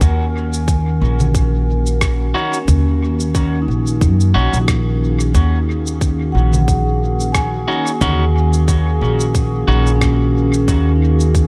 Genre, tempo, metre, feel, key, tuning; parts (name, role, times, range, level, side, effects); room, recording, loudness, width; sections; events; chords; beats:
ambient dub; 90 BPM; 4/4; swing 56% on 16ths; Eb minor; A4 = 444 Hz
warbly tape-like pad; sustained chords; 0.0-11.5 s; Eb3 to Bb4; -24 LUFS; equal; chorus, built-in reverb
vibraphone with medium mallets; arpeggios; 0.0-11.5 s; Db4 to Ab5; -27 LUFS; equal; dub echo
upright bass; bass; 0.0-11.5 s; Bb1 to Gb2; -18 LUFS; equal
electronic cabasa, congas and rim click; drums; 0.0-11.5 s; -26 LUFS; equal; studio ambience, dub echo
electronic kick drum; drums; 0.0-11.5 s; -20 LUFS; equal; studio ambience
electric guitar at the edge of break-up; stabs; 2.3-9.9 s; Db4 to Gb4; -28 LUFS; equal; dub echo
light reverb; -16 LUFS; mono
0.0-11.5 A section
0.0 Ebm7
| 0.01 0.68 1.35 2.01 | 2.68 3.35 4.01 4.68 | 5.35 6.01 6.68 7.35 | 8.01 8.68 9.35 10.01 | 10.68 11.35